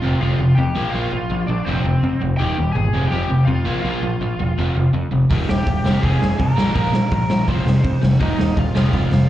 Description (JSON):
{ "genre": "punk rock", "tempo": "165 BPM", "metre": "4/4", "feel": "straight", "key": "unclear", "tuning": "A4 = 442 Hz", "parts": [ { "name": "lead guitar through a small cranked amp", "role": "melody", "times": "0.0-9.3 s", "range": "C4 to C6", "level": "-26 LUFS", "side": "equal", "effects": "overdrive, slapback echo" }, { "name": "crunchy overdriven guitar", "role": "riff", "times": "0.0-9.3 s", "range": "Eb2 to Bb3", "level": "-20 LUFS", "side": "equal", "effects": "none" }, { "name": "growling picked electric bass", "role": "bass", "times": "0.0-9.2 s", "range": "Eb1 to F2", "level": "-21 LUFS", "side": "equal", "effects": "overdrive" }, { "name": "raw garage drum kit", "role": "drums", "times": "5.3-9.2 s", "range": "hi-hat, kick drum, snare drum", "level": "-20 LUFS", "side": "equal", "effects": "none" } ], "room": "little or no reverb", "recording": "live gig heard through the venue's PA, club reverb, nothing above 10.6 kHz", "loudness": "-16 LUFS", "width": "side -13 dB against mid", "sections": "0.0-9.3 A section", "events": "none", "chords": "0.0 F5; 0.8 Bb; 1.7 F5; 2.4 Eb; 2.9 Fm; 3.7 Bb5; 4.6 F5; 5.3 Eb; 5.8 Fm; 6.6 Bb5; 7.5 F5; 8.2 Eb5; 8.8 F5" }